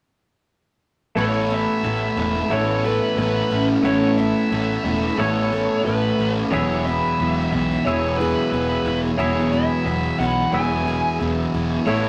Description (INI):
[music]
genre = rock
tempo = 90 BPM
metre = 4/4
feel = straight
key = A major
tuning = A4 = 440 Hz
[part]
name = bluesy overdriven lead guitar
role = melody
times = 1.2-12.1 s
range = B4 to G#5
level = -28 LUFS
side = equal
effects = distortion
[part]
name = picked twelve-string acoustic guitar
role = arpeggios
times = 1.2-12.1 s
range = E3 to A4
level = -28 LUFS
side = equal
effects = none
[part]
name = thick fuzz guitar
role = riff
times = 1.2-12.1 s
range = E2 to A3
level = -28 LUFS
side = equal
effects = distortion
[part]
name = twangy electric guitar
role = riff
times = 1.2-12.1 s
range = E3 to E5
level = -26 LUFS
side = equal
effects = none
[part]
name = fuzz picked electric bass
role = bass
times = 1.2-12.1 s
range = E1 to B1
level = -29 LUFS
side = equal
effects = overdrive
[sound]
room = wet small room reverb, RT60 0.5 s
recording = rough rehearsal-room recording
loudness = -21 LUFS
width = mono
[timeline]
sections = 1.2-12.1 A section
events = none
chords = 1.2 Aadd9; 6.5 Eadd9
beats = | 1.17 1.84 2.51 3.18 | 3.85 4.51 5.18 5.85 | 6.52 7.19 7.86 8.53 | 9.19 9.86 10.53 11.20 | 11.87